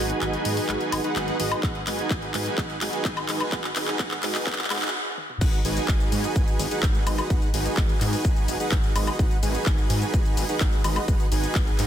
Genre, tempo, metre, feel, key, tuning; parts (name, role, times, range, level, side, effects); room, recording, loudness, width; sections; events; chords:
EDM, festival progressive house; 127 BPM; 4/4; straight; G# minor; A4 = 438 Hz
dense compressed supersaw; riff; 0.0-11.9 s; D#4 to G#5; -27 LUFS; right 2 dB; sidechain pumping, low-pass filter, ping-pong delay
wide detuned saw bass; bass; 0.0-11.9 s; G#1 to G#2; -30 LUFS; equal; chorus, sidechain pumping
house drum kit; drums; 0.1-11.9 s; crash cymbal, handclaps, hi-hat, shaker, toms, woodblock; -29 LUFS; left 2 dB
electronic kick drum; drums; 1.6-11.6 s; -23 LUFS; equal
light reverb; dense, heavily limited modern master, high-pass filter; -22 LUFS; side -10 dB against mid
0.0-5.4 A section; 5.4-11.9 B section
build-up 0.0-5.4; drum fill 0.0-4.9, 5.2; filter sweep 0.0-5.4; stop 4.9-5.4; drop 5.4-11.9
0.0 G#m7